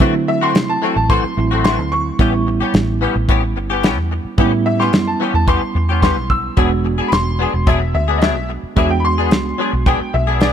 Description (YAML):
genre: straight-eighth soul blues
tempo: 110 BPM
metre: 4/4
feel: straight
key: A mixolydian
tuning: A4 = 440 Hz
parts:
  - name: barky reed electric piano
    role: accompaniment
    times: 0.0-10.5 s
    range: F#3 to F#4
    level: -21 LUFS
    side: right 6 dB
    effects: overdrive, fast tremolo
  - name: direct-recorded clean electric guitar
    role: stabs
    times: 0.0-10.5 s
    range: E3 to G#4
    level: -21 LUFS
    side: left 6 dB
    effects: ensemble chorus
  - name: vintage muted fingered electric bass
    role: bass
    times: 0.0-10.5 s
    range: E1 to D3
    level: -19 LUFS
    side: equal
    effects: none
  - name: damped 70s drum kit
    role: drums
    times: 0.0-10.5 s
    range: hi-hat, kick drum, snare drum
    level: -16 LUFS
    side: equal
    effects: none
  - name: clear upright piano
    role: second line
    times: 0.3-10.5 s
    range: D5 to E6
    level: -21 LUFS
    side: left 1 dB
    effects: none
room: little or no reverb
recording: none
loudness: -14 LUFS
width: side -9 dB against mid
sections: 0.0-10.5 A section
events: upright piano solo 0.0-10.5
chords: 0.0 D9; 2.2 A9; 6.6 E9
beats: | 0.00 0.55 1.10 1.65 | 2.19 2.74 3.29 3.84 | 4.38 4.93 5.48 6.03 | 6.58 7.12 7.67 8.22 | 8.77 9.31 9.86 10.41